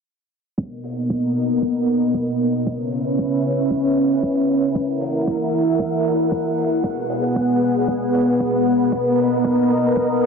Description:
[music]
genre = nu-disco, nu disco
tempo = 115 BPM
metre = 4/4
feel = straight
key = B major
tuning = A4 = 437 Hz
[part]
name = string machine, full ensemble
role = sustained chords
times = 0.6-10.3 s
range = B3 to F#5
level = -17 LUFS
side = equal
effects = ensemble chorus, vintage 12-bit sampler grit, sidechain pumping
[part]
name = electronic kick drum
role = drums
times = 0.6-10.1 s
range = none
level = -24 LUFS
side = right 1 dB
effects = high-pass filter on kick, studio reverb
[part]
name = hi-hat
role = drums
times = 0.8-10.3 s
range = none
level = -38 LUFS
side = left 3 dB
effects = studio reverb
[sound]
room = moderate plate reverb, RT60 1.2 s, studio reverb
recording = dense, heavily limited modern master, low-pass filter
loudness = -17 LUFS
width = side -5 dB against mid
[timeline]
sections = 0.6-10.3 A section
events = filter sweep on string machine 0.6-10.3; filter sweep 0.6-10.3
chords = 0.6 Bmaj7; 2.7 C#m7; 4.8 F#7; 6.8 G#m7; 8.9 Bmaj7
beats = | 0.58 1.10 1.62 2.14 | 2.67 3.19 3.71 4.23 | 4.75 5.27 5.79 6.32 | 6.84 7.36 7.88 8.40 | 8.93 9.45 9.97

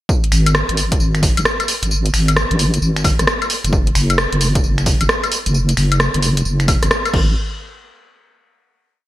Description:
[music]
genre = UK garage, two-step garage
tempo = 132 BPM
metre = 4/4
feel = swing 64% on 16ths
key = unclear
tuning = A4 = 439 Hz
[part]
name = electronic kick drum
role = drums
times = 0.1-7.3 s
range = none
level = -18 LUFS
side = equal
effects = none
[part]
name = garage drum kit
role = drums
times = 0.1-7.3 s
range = crash cymbal, finger snaps, hi-hat, rim click, tambourine, woodblock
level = -18 LUFS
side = equal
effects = gated reverb
[part]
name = deep soft wobble bass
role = bass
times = 0.3-7.3 s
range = F#1 to G#1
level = -16 LUFS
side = equal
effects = chorus, tube saturation, sidechain pumping
[sound]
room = light reverb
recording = bright 1980s-style digital production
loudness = -14 LUFS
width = side -15 dB against mid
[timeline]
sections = 0.1-7.4 drop; 7.4-9.1 final hit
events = drop 0.1-7.4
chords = none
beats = | 0.09 0.55 1.00 1.45 | 1.91 2.36 2.82 3.27 | 3.73 4.18 4.64 5.09 | 5.54 6.00 6.45 6.91

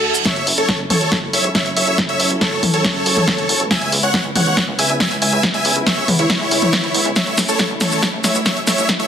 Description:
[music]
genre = uplifting trance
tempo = 139 BPM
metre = 4/4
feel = straight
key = F# minor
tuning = A4 = 440 Hz
[part]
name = big supersaw lead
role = melody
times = 0.0-9.1 s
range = E4 to G#5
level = -18 LUFS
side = equal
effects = sidechain pumping, digital delay
[part]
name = dark studio string section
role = sustained chords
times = 0.0-9.1 s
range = D2 to E5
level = -25 LUFS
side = equal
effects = sidechain pumping
[part]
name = reverse cymbal and riser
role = sound effects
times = 0.0-0.3, 8.6-9.1 s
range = none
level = -24 LUFS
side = right 7 dB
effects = none
[part]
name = punchy analog drum machine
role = drums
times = 0.1-9.1 s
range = hi-hat, shaker, snare drum, toms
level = -17 LUFS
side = equal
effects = sidechain pumping on perc, sidechain pumping on hats, sidechain pumping on toms
[part]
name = electronic kick drum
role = drums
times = 0.3-9.0 s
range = none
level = -27 LUFS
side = equal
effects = high-pass filter on kick
[part]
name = plucky analog bass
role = bass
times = 0.4-9.1 s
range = F#1 to D2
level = -27 LUFS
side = equal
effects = sidechain pumping, high-pass filter
[sound]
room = moderate digital room reverb, RT60 1.3 s, digital ambience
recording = dense, heavily limited modern master, high-pass filter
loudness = -14 LUFS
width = side -8 dB against mid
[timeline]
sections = 0.3-9.1 A section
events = reverse cymbal 0.0; build-up 0.3-9.1; drum fill 0.3-9.1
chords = 0.3 F#m7; 3.7 C#m7; 7.2 A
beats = | 0.26 0.69 1.12 1.55 | 1.98 2.41 2.85 3.28 | 3.71 4.14 4.57 5.00 | 5.43 5.87 6.30 6.73 | 7.16 7.59 8.03 8.46 | 8.89

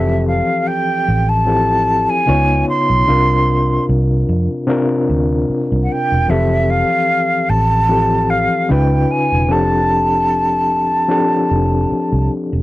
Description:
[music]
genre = lush 1970s-style soul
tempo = 75 BPM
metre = 4/4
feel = swing 54% on 16ths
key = F major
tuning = A4 = 441 Hz
[part]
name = breathy concert flute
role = melody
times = 0.0-12.3 s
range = E5 to C6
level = -16 LUFS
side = right 1 dB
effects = none
[part]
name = overdriven reed electric piano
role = accompaniment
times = 0.0-12.6 s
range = C3 to Db5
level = -18 LUFS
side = left 2 dB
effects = fast tremolo
[part]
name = vintage muted fingered electric bass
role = bass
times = 0.0-12.6 s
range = E1 to F2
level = -17 LUFS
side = right 1 dB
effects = none
[sound]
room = little or no reverb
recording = dry, close 1970s-style studio recording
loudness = -13 LUFS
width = side -16 dB against mid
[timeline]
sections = 0.0-12.6 A section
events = none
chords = 0.0 Fmaj7; 2.3 Db9; 3.1 C7sus4; 6.3 Fmaj7; 8.7 Db9; 9.5 F6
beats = 0.67 1.48 2.28 | 3.08 3.88 4.68 5.48 | 6.29 7.09 7.89 8.69 | 9.49 10.29 11.10 11.90

